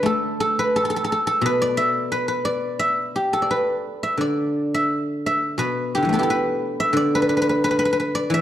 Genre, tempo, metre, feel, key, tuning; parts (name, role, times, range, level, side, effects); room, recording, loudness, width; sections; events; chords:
chinese traditional, Chinese solo plucked strings; 87 BPM; 2/4; rubato; E yu mode; A4 = 440 Hz
guzheng; solo; 0.0-8.4 s; B2 to E5; -19 LUFS; equal
wet recital hall reverb, RT60 1.6 s; dark, warm production; -19 LUFS; side -11 dB against mid
0.0-8.4 A section